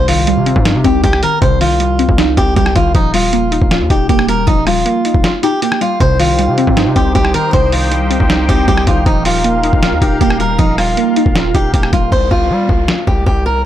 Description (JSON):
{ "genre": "hip hop, trap", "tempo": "157 BPM", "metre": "4/4", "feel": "half-time", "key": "C minor", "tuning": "A4 = 440 Hz", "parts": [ { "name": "fingerpicked swing-style acoustic guitar", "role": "melody", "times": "0.0-13.6 s", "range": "Eb4 to C5", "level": "-16 LUFS", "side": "equal", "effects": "none" }, { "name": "warbly dusty pluck", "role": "accompaniment", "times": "0.0-12.1 s", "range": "C3 to F4", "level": "-17 LUFS", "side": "right 1 dB", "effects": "chorus, phaser" }, { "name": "distorted 808-style bass", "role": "bass", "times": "0.0-13.6 s", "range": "Eb1 to G3", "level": "-17 LUFS", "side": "equal", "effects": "distortion" }, { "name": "impact and downlifter", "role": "sound effects", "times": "0.0-1.4, 12.1-13.7 s", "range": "none", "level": "-28 LUFS", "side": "equal", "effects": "none" }, { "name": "lo-fi sampler-style drum kit", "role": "drums", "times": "0.1-13.4 s", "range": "hi-hat, kick drum, rim click, snare drum", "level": "-15 LUFS", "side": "equal", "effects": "none" }, { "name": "sweeping resonant pad", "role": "sustained chords", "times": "6.0-12.1 s", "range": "Eb4 to G5", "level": "-22 LUFS", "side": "left 1 dB", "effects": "chorus" } ], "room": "digital ambience", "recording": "blown-out, overdriven recording, overdrive", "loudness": "-10 LUFS", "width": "side -11 dB against mid", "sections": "0.0-12.1 A section; 12.1-13.7 B section", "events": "impact 0.0-1.4; kick muted 5.2-6.0; hi-hats muted 12.1-13.7", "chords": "0.0 Cm; 2.9 Ebadd9; 6.0 Cm; 9.1 Ebadd9; 12.1 C5", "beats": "0.27 0.65 1.04 | 1.42 1.80 2.18 2.56 | 2.95 3.33 3.71 4.09 | 4.48 4.86 5.24 5.62 | 6.00 6.39 6.77 7.15 | 7.53 7.92 8.30 8.68 | 9.06 9.44 9.83 10.21 | 10.59 10.97 11.36 11.74 | 12.12 12.50 12.88 13.27 | 13.65" }